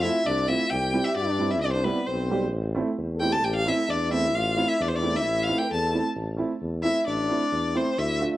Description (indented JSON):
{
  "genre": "klezmer",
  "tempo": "132 BPM",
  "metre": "2/4",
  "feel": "straight",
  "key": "A minor",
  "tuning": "A4 = 441 Hz",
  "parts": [
    { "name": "clear violin", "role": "melody", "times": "0.0-8.2 s", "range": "B4 to A5", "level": "-26 LUFS", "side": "left 1 dB", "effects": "cassette tape" },
    { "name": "clear trombone", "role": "second line", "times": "0.0-8.2 s", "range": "B3 to B4", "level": "-30 LUFS", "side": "left 3 dB", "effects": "cassette tape" },
    { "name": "dark upright piano", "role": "accompaniment", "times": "0.0-8.3 s", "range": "G3 to G4", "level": "-29 LUFS", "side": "right 3 dB", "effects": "cassette tape" },
    { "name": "warm tuba", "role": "bass", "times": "0.0-8.2 s", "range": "A1 to G2", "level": "-29 LUFS", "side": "equal", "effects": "none" }
  ],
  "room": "moderate spring reverb, RT60 2.4 s",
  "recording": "home recording on cassette",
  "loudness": "-23 LUFS",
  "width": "side -15 dB against mid",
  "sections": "0.0-6.2 A section; 6.2-8.4 B section",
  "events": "violin solo 6.2-8.4",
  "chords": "0.0 F; 0.7 C; 2.5 Am"
}